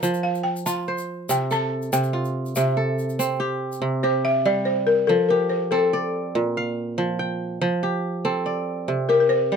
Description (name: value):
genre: west african traditional, West African string and xylophone music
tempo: 95 BPM (dotted quarters)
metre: 12/8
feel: straight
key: F major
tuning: A4 = 444 Hz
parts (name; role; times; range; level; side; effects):
- balafon; melody; 0.0-9.6 s; A4 to A5; -21 LUFS; left 3 dB; none
- kora; arpeggios; 0.0-9.6 s; Bb2 to G5; -23 LUFS; right 2 dB; none
- egg shaker; percussion; 0.0-3.8 s; none; -33 LUFS; left 4 dB; none
room: light reverb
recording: close, detailed microphones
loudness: -20 LUFS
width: side -6 dB against mid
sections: 0.0-3.8 A section; 3.8-9.6 B section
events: balafon solo 0.0-3.8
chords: 0.0 F; 1.3 C5; 5.1 F; 6.4 Bb; 7.6 F; 8.9 C5